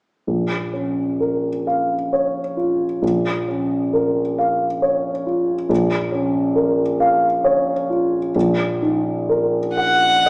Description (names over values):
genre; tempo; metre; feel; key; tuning
classical, slow romantic movement for piano trio; 45 BPM (dotted quarters); 6/8; uneven beats, rubato; Bb minor; A4 = 440 Hz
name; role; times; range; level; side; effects
dark concert grand piano; accompaniment; 0.3-10.3 s; Bb1 to Gb5; -20 LUFS; equal; none
rich violin; melody; 9.8-10.3 s; Gb5; -16 LUFS; equal; none
room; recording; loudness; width
wet recital hall reverb, RT60 1.6 s; heard from further back in the room, small speaker sound; -20 LUFS; mono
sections
0.3-10.3 A section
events
none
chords
0.3 Bbm; 8.3 Ebm/Bb